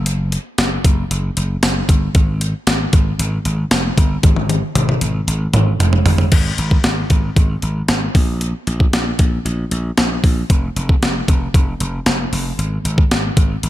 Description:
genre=1980s-style pop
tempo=115 BPM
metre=4/4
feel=straight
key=unclear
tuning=A4 = 440 Hz
part: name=slap bass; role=bass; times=0.0-13.7 s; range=F1 to Bb1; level=-19 LUFS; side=equal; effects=none
part: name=clean 12-bit digital drum machine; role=drums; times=0.1-13.7 s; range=crash cymbal, hi-hat, kick drum, snare drum, tambourine, toms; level=-15 LUFS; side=equal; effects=none
room=little or no reverb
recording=none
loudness=-14 LUFS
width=side -14 dB against mid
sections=0.0-6.3 A section; 6.3-13.7 B section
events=drum fill 4.2-6.3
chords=none

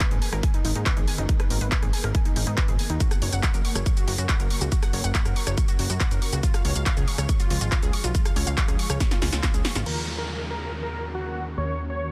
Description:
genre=uplifting trance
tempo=140 BPM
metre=4/4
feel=straight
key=F# major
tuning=A4 = 441 Hz
part: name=shimmering ambient pad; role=sustained chords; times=0.0-12.1 s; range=C#3 to A#4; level=-40 LUFS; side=equal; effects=chorus, built-in reverb, phaser, sidechain pumping
part: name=unison pluck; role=arpeggios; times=0.0-9.8 s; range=D#4 to C#6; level=-37 LUFS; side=equal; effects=sidechain pumping, digital delay
part: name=electronic kick drum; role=drums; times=0.0-9.5 s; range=none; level=-26 LUFS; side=equal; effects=none
part: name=punchy analog drum machine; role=drums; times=0.0-9.9 s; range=crash cymbal, handclaps, hi-hat, rim click, shaker, snare drum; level=-32 LUFS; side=equal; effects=none
part: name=plucky analog bass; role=bass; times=0.1-12.1 s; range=F#1 to G#2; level=-30 LUFS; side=equal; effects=sidechain pumping
part: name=big supersaw lead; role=melody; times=9.9-12.1 s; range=F#4 to C#5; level=-34 LUFS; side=equal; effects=sidechain pumping, low-pass filter, tape echo
part: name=downlifter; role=sound effects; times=9.9-12.1 s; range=none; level=-38 LUFS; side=equal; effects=none
room=digital ambience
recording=dense, heavily limited modern master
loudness=-24 LUFS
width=mono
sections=0.0-9.9 A section; 9.9-12.1 B section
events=drum fill 9.0-9.9; filter sweep on supersaw synth 9.9-12.1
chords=0.0 G#madd9; 3.0 F#; 6.4 C#; 9.9 D#m7

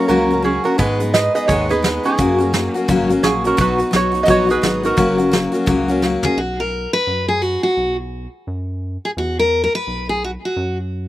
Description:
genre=honky-tonk and classic country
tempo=172 BPM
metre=4/4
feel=swing 61% on 8ths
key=B major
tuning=A4 = 440 Hz
part: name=lap resonator guitar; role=second line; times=0.0-6.0 s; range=C#4 to D#5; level=-18 LUFS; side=right 3 dB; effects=slapback echo
part: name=picked steel-string acoustic guitar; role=accompaniment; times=0.0-6.4 s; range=F#2 to G#4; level=-17 LUFS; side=left 2 dB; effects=none
part: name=rubbery square bass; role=bass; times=0.1-11.1 s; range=F#1 to G#2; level=-25 LUFS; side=equal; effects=none
part: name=soft brush drum kit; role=drums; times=0.8-6.3 s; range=hi-hat, kick drum, snare drum, toms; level=-21 LUFS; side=right 1 dB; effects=none
part: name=picked steel-string acoustic guitar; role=melody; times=6.2-10.8 s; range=F#4 to B4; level=-18 LUFS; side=left 1 dB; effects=slapback echo
room=little or no reverb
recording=recorded outdoors, with no room sound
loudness=-15 LUFS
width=side -14 dB against mid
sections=0.0-6.4 A section; 6.4-11.1 B section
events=resonator guitar played with a steel bar solo 0.0-6.4; drum fill 6.0-6.4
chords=0.0 F#; 0.8 G#m; 2.2 F#; 3.6 B; 5.0 F#; 6.4 B5; 9.2 E5; 10.6 F#5

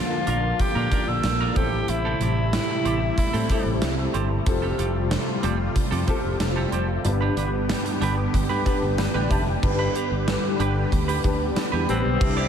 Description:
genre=1980s-style pop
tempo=93 BPM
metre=4/4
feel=straight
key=unclear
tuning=A4 = 442 Hz
part: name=breathy tenor saxophone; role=melody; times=0.0-3.8, 11.9-12.5 s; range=C4 to A4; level=-28 LUFS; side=left 1 dB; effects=ping-pong delay
part: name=warm concert grand piano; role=accompaniment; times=0.0-12.5 s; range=G2 to B5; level=-28 LUFS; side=left 2 dB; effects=ensemble chorus
part: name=lush unison pad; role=sustained chords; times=0.0-12.5 s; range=C3 to E5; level=-28 LUFS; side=equal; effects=chorus, phaser
part: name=clean electric guitar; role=riff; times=0.1-12.5 s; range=C4 to D5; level=-31 LUFS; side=right 6 dB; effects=lush chorus, ping-pong delay
part: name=fretless electric bass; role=bass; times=0.3-12.5 s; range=F1 to Bb2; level=-26 LUFS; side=equal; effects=wide subtle chorus
part: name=gated 80s drum kit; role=drums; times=0.3-12.4 s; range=crash cymbal, hi-hat, kick drum, snare drum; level=-26 LUFS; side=equal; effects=none
room=moderate plate reverb, RT60 2.0 s, studio reverb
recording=dreamy mix soaked in reverb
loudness=-21 LUFS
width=side -8 dB against mid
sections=0.0-9.6 A section; 9.6-12.2 B section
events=grand piano fill 8.7-9.6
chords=0.0 Bb; 1.6 Am7; 4.5 Fadd9; 7.0 G

